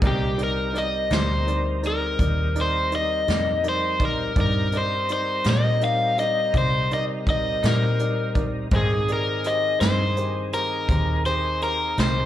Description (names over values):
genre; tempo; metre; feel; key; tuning
slow blues; 55 BPM (dotted quarters); 12/8; straight; C minor; A4 = 440 Hz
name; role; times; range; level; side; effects
electric guitar at the edge of break-up; accompaniment; 0.0-12.2 s; Ab2 to Eb4; -33 LUFS; left 2 dB; tremolo, slapback echo
warm upright piano; accompaniment; 0.0-12.3 s; Eb4 to D5; -32 LUFS; right 5 dB; slapback echo
tonewheel organ; sustained chords; 0.0-12.3 s; Eb3 to Bb4; -32 LUFS; right 1 dB; slow rotary speaker, chorus vibrato
vintage muted fingered electric bass; bass; 0.0-12.3 s; C2 to C3; -26 LUFS; equal; none
jazz brush drum kit; drums; 0.0-12.2 s; hi-hat, kick drum, snare drum; -26 LUFS; equal; none
overdriven semi-hollow guitar; melody; 0.1-12.3 s; G4 to F5; -24 LUFS; left 2 dB; slapback echo
room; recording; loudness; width
light reverb, small room ambience; live gig heard through the venue's PA, club reverb; -20 LUFS; side -12 dB against mid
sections
0.0-12.3 A section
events
none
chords
0.0 Cm7; 8.7 Abmaj7